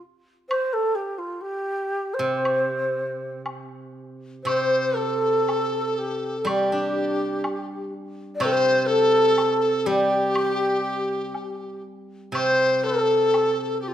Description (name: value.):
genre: chinese traditional, Chinese chamber ensemble.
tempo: 61 BPM.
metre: 2/4.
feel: rubato.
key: unclear.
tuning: A4 = 440 Hz.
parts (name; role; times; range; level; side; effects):
low xiao; melody; 0.0-13.9 s; F4 to D5; -23 LUFS; right 1 dB; none.
woodblock; percussion; 0.5-13.6 s; none; -33 LUFS; equal; none.
steel-string zither; accompaniment; 2.2-13.9 s; C3 to D4; -27 LUFS; equal; none.
hollow large dizi; second line; 4.5-13.9 s; F4 to C5; -25 LUFS; left 3 dB; none.
room: moderate recital hall reverb, RT60 1.5 s.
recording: close, detailed microphones.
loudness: -20 LUFS.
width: side -11 dB against mid.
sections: 0.0-4.5 A section; 4.5-13.9 B section.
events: none.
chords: none.